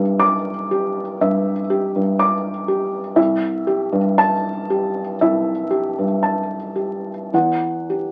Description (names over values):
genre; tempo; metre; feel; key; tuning
neoclassical minimalist piano; 59 BPM; 4/4; rubato; unclear; A4 = 440 Hz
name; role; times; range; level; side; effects
felt-muted upright piano; solo; 0.0-8.1 s; C2 to D6; -20 LUFS; equal; none
room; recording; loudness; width
moderate studio ambience, RT60 0.5 s; very old 78 rpm record, vinyl crackle; -20 LUFS; mono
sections
0.0-8.1 A section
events
none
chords
0.0 Cadd9; 3.2 Am7/C; 7.3 Emadd9